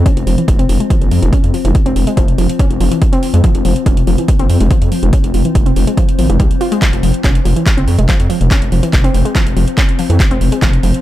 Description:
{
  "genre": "driving peak-time techno",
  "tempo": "142 BPM",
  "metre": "4/4",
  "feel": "straight",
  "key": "unclear",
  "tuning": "A4 = 440 Hz",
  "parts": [
    { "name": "gritty driven synth bass", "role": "bass", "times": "0.0-10.9 s", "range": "F1 to F2", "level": "-14 LUFS", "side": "equal", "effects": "distortion, tube saturation, sidechain pumping" },
    { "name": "metallic inharmonic drone", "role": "drone", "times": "0.0-11.0 s", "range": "F3 to C4", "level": "-21 LUFS", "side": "left 5 dB", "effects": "chorus, built-in reverb, sidechain pumping" },
    { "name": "warbly dusty pluck", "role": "riff", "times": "0.1-10.9 s", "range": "E3 to F4", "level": "-19 LUFS", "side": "equal", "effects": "chorus, sidechain pumping, ping-pong delay" },
    { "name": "electronic kick drum", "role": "drums", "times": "0.1-10.7 s", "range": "none", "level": "-13 LUFS", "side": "equal", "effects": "none" },
    { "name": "techno drum kit", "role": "drums", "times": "0.1-11.0 s", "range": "handclaps, hi-hat", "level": "-23 LUFS", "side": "right 1 dB", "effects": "none" }
  ],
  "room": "digital ambience",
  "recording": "dark, warm production",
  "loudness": "-10 LUFS",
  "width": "side -14 dB against mid",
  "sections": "0.0-11.0 A section",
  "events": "none",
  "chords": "0.0 F5",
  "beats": "| 0.06 0.48 0.90 1.33 | 1.75 2.17 2.59 3.02 | 3.44 3.86 4.28 4.71 | 5.13 5.55 5.97 6.40 | 6.82 7.24 7.66 8.09 | 8.51 8.93 9.35 9.78 | 10.20 10.62"
}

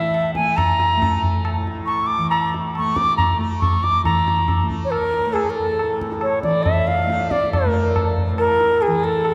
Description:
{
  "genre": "indian classical, Hindustani",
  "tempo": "138 BPM",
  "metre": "4/4",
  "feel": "straight",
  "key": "unclear",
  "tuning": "A4 = 440 Hz",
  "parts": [
    { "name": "bright reedy bansuri", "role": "melody", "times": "0.0-9.3 s", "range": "G#4-20c to D6", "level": "-21 LUFS", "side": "equal", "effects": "none" },
    { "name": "tanpura", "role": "drone", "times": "0.0-9.3 s", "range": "A2 to A3", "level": "-29 LUFS", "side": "equal", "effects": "none" },
    { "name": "tabla", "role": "percussion", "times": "0.1-9.3 s", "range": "none", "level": "-25 LUFS", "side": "equal", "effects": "none" }
  ],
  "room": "wet cathedral reverb, RT60 5.0 s",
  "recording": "recorded in a church or concert hall",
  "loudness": "-19 LUFS",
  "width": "mono",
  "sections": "0.0-4.0 A section; 4.0-9.3 B section",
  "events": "none",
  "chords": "none",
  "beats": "0.13 | 0.56 1.00 1.44 1.87 | 2.31 2.75 3.18 3.62 | 4.05 4.49 4.92 5.35 | 5.79 6.22 6.66 7.09 | 7.52 7.96 8.39 8.82 | 9.25"
}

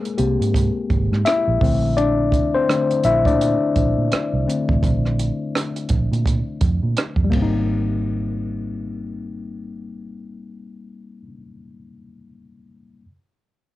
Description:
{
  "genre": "R&B, neo-soul",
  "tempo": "84 BPM",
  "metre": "4/4",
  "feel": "swing 60% on 16ths",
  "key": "unclear",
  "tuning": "A4 = 440 Hz",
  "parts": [
    { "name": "tine electric piano", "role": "accompaniment", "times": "0.0-13.1 s", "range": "D3 to Fb5", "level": "-22 LUFS", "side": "left 4 dB", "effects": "cassette tape" },
    { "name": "compact cocktail drum kit", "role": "drums", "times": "0.1-7.5 s", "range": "hi-hat, kick drum, ride cymbal, rim click", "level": "-22 LUFS", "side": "right 2 dB", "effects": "none" },
    { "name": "vintage muted fingered electric bass", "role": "bass", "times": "0.2-11.3 s", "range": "Ab1 to Bb2", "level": "-22 LUFS", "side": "right 2 dB", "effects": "none" }
  ],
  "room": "light reverb",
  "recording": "home recording on cassette",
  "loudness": "-17 LUFS",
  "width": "side -16 dB against mid",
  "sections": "0.0-7.7 A section; 7.7-10.5 B section",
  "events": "tine electric piano solo 0.0-7.7",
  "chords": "0.0 Abmaj9; 1.6 Bbmaj9; 7.3 Abmaj9",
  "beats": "0.54 1.25 | 1.97 2.68 3.39 4.11 | 4.82 5.54 6.25 6.97 | 7.68 8.39 9.11 9.82"
}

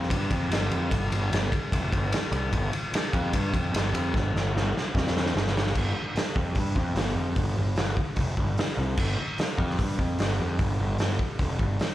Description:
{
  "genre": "blues rock power trio and southern rock",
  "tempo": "149 BPM",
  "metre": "4/4",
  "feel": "straight",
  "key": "unclear",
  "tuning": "A4 = 440 Hz",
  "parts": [
    { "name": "fuzz picked electric bass", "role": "bass", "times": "0.0-11.8 s", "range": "F1 to G2", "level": "-27 LUFS", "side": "equal", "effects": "overdrive" },
    { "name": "raw garage drum kit", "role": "drums", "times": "0.0-11.9 s", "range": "crash cymbal, hi-hat, kick drum, ride cymbal, snare drum", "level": "-27 LUFS", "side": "equal", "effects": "none" }
  ],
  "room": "little or no reverb",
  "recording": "live gig heard through the venue's PA, club reverb",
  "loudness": "-24 LUFS",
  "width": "side -14 dB against mid",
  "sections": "0.0-5.8 A section; 5.8-11.9 A section",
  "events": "drum fill 4.1-5.8",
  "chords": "none",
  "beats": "0.11 0.51 | 0.91 1.32 1.72 2.12 | 2.53 2.93 3.33 3.74 | 4.14 4.54 4.95 5.35 | 5.75 6.15 6.56 6.96 | 7.36 7.77 8.17 8.57 | 8.98 9.38 9.78 10.19 | 10.59 10.99 11.39 11.80"
}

